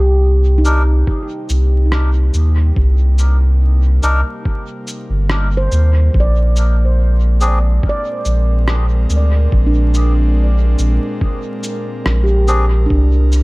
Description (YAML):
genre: ambient dub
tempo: 71 BPM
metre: 4/4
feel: straight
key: C minor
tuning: A4 = 440 Hz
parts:
  - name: airy breathy pad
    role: sustained chords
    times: 0.0-13.4 s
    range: Bb2 to C5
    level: -27 LUFS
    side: equal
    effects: chorus
  - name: handpan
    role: arpeggios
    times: 0.0-13.4 s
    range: D4 to D5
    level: -23 LUFS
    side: right 2 dB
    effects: dub echo
  - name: warm sub bass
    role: bass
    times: 0.0-13.4 s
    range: G1 to Eb2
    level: -12 LUFS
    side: equal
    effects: none
  - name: melodica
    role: stabs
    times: 0.6-12.7 s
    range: C4 to Bb4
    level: -24 LUFS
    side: left 2 dB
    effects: dub echo
  - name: electronic shaker and rim click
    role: drums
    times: 0.7-13.4 s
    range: none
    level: -25 LUFS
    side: equal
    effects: studio ambience, dub echo
  - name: electronic kick drum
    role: drums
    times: 1.1-13.1 s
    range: none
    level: -18 LUFS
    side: equal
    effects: studio ambience
room: digital ambience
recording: echo-heavy mix, vinyl crackle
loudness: -12 LUFS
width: side -23 dB against mid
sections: 0.0-13.4 A section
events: fade-in on analog synth pad 0.0-13.4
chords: 0.0 Cm7; 6.1 Bb7; 12.9 Cm7